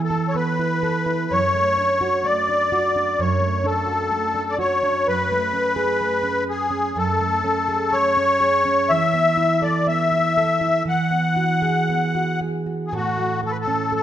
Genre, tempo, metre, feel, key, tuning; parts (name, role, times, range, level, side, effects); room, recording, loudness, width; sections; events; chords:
celtic folk, Celtic slow air; 56-65 BPM; 4/4; rubato; A4 = 440 Hz
musette accordion; melody; 0.0-14.0 s; F#4 to F#5; -19 LUFS; left 2 dB
nylon-string guitar; accompaniment; 0.0-14.0 s; F#2 to A4; -24 LUFS; right 3 dB
moderate scoring stage reverb, RT60 1.5 s; minimal, uncompressed stereo recording; -18 LUFS; side -11 dB against mid
0.0-12.9 A section; 12.9-14.0 B section
0.0 Esus4; 1.3 Dmaj7/F#; 5.0 F#madd9; 8.9 Esus4; 10.9 Eadd9; 12.9 A